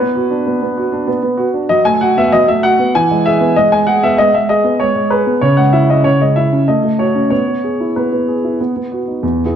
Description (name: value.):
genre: classical-period piano sonatina.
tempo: 96 BPM.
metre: 3/4.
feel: straight.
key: E major.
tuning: A4 = 443 Hz.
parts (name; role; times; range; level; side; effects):
clear baby grand piano; solo; 0.0-9.6 s; E2 to G#5; -11 LUFS; equal; none.
room: moderate recital hall reverb, RT60 1.4 s.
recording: dark, warm production.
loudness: -11 LUFS.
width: side -9 dB against mid.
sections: 0.0-9.2 A section.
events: none.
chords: 0.0 Bm; 1.7 B5/F#; 2.9 E; 3.6 G#m; 5.4 C#m; 6.7 F#m/A; 7.3 E/B; 8.6 B.